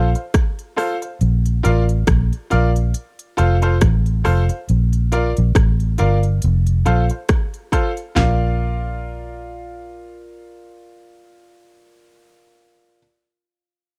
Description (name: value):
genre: roots reggae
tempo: 69 BPM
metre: 4/4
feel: swing 57% on 16ths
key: Bb major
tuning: A4 = 440 Hz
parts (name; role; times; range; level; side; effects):
- bright grand piano; stabs; 0.0-13.0 s; F4 to F5; -25 LUFS; equal; none
- vintage muted fingered electric bass; bass; 0.0-13.0 s; F1 to Bb1; -19 LUFS; equal; none
- house drum kit; drums; 0.2-8.4 s; hi-hat, kick drum, rim click, snare drum, toms; -21 LUFS; equal; none
room: little or no reverb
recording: dry, close 1970s-style studio recording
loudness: -18 LUFS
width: mono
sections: 0.0-8.2 A section; 8.2-11.6 B section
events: none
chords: 0.0 F; 1.2 Bb; 2.9 F; 4.7 Bb; 6.4 F; 8.2 Bb